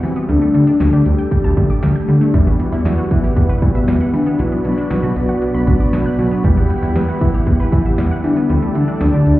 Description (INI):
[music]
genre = synth-pop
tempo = 117 BPM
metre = 4/4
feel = straight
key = E minor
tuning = A4 = 439 Hz
[part]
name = soft octave-layered synth lead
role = melody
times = 0.0-9.4 s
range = B3 to B4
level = -18 LUFS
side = left 1 dB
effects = chorus, digital delay
[part]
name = mellow synth brass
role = accompaniment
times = 0.0-9.4 s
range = F#3 to F#5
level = -23 LUFS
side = equal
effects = chorus, shimmer reverb
[part]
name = wide unison pluck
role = arpeggios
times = 0.0-9.2 s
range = F#3 to G6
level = -26 LUFS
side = left 1 dB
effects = digital delay, shimmer reverb
[part]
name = fat analog bass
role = bass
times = 0.0-9.4 s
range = B1 to E3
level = -16 LUFS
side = equal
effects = none
[part]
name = house drum kit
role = drums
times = 0.0-9.4 s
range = hi-hat, kick drum, snare drum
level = -17 LUFS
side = equal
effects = none
[part]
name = brassy analog pad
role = sustained chords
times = 2.3-9.4 s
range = G3 to B5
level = -27 LUFS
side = equal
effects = chorus, shimmer reverb
[sound]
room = light reverb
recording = heard muffled through a wall, club reverb, EQ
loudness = -13 LUFS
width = side -16 dB against mid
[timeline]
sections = 0.0-9.4 A section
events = none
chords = 0.3 Dsus4; 2.3 Emadd9; 4.4 Bm; 6.4 Emadd9; 8.5 Dsus4